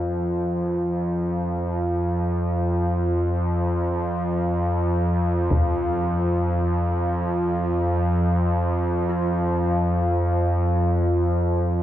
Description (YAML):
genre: dark ambient drone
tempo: free time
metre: none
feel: none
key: unclear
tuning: A4 = 439 Hz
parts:
  - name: gamelan-type bronze metallophone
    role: arpeggios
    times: 0.0-2.3, 9.1-11.8 s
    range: F3 to F4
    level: -40 LUFS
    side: right 5 dB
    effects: none
  - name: analog drone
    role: drone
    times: 0.0-11.8 s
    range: F2 to F3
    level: -20 LUFS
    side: equal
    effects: chorus
  - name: taiko ensemble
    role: percussion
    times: 5.5-5.7 s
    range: none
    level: -25 LUFS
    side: equal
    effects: low-pass filter on perc
room: moderate huge ambient reverb, RT60 8.0 s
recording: dark, warm production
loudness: -20 LUFS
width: side -12 dB against mid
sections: 0.0-11.8 A section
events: none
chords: none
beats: free time